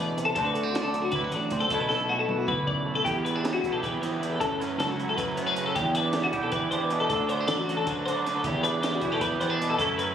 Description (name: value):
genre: math rock and midwest emo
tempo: 312 BPM (eighths)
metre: 7/8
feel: straight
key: E minor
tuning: A4 = 439 Hz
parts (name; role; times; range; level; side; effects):
- twangy electric guitar; accompaniment; 0.0-10.1 s; E2 to G4; -30 LUFS; right 5 dB; none
- twelve-string electric guitar; arpeggios; 0.0-10.1 s; F#4 to D5; -28 LUFS; left 4 dB; analog chorus
- fuzz fingered electric bass; bass; 0.0-10.1 s; A1 to F#3; -34 LUFS; equal; overdrive
- compact cocktail drum kit; drums; 0.2-10.1 s; hi-hat, kick drum, snare drum, toms; -35 LUFS; equal; none
- raw garage guitar; riff; 3.0-10.1 s; D3 to C5; -34 LUFS; right 1 dB; overdrive
room: light reverb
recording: recorded on a phone in the room, studio reverb, compression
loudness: -24 LUFS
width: side -9 dB against mid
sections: 0.0-3.1 A section; 3.1-10.1 B section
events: drum fill 1.9-3.1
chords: 0.4 D7; 1.7 B7sus4; 3.1 Em9; 4.4 F#m7; 5.8 Em9; 7.1 D7; 8.4 Em9